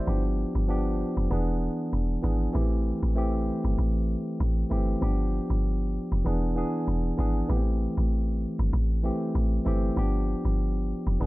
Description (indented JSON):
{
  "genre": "afrobeats",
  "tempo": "97 BPM",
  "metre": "4/4",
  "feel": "swing 55% on 16ths",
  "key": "A minor",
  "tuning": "A4 = 440 Hz",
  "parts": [
    { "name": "tine electric piano", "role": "accompaniment", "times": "0.0-11.3 s", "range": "E3 to C5", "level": "-29 LUFS", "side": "equal", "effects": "none" },
    { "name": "deep log drum bass", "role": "bass", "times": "0.1-11.3 s", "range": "E1 to A1", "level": "-26 LUFS", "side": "equal", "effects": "none" }
  ],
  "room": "little or no reverb",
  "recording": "none",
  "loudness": "-24 LUFS",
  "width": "side -19 dB against mid",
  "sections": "0.0-5.0 A section; 5.0-11.3 B section",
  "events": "none",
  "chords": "0.1 G7; 1.3 E7; 2.5 Am7; 5.0 G7; 6.3 E7; 7.5 Am7; 10.0 G7"
}